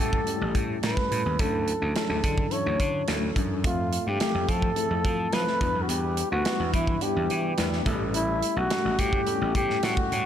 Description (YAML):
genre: polished 1980s jazz-funk pop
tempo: 107 BPM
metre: 4/4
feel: straight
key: unclear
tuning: A4 = 443 Hz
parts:
  - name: breathy flugelhorn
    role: melody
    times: 0.0-10.3 s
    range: E4 to C#5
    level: -28 LUFS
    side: equal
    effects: slapback echo
  - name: tine electric piano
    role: accompaniment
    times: 0.0-10.3 s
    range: E3 to E5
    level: -31 LUFS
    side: left 3 dB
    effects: overdrive, fast stereo tremolo, wide subtle chorus, slapback echo
  - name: gritty slap bass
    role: bass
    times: 0.0-10.2 s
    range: A1 to F3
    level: -29 LUFS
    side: equal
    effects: overdrive
  - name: modern studio drum kit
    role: drums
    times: 0.1-10.2 s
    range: hi-hat, kick drum, snare drum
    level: -29 LUFS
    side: right 1 dB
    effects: none
room: moderate lush hall reverb, RT60 2.8 s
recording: big arena sound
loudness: -23 LUFS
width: side -9 dB against mid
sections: 0.0-10.3 A section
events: none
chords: 0.0 A7; 1.4 Dmaj9; 3.6 Fmaj7; 5.6 Em7; 7.9 A7